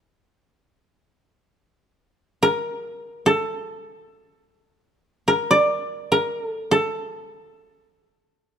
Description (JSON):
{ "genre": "japanese traditional, Japanese chamber music", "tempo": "free time", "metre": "none", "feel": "none", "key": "unclear", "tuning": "A4 = 444 Hz", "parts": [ { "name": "koto", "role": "solo", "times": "0.0-8.6 s", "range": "A4 to D5", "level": "-20 LUFS", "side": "equal", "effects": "none" } ], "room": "light reverb", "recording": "close, detailed microphones", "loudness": "-20 LUFS", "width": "side -8 dB against mid", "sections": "0.0-8.6 A section", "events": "none", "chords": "none", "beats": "free time" }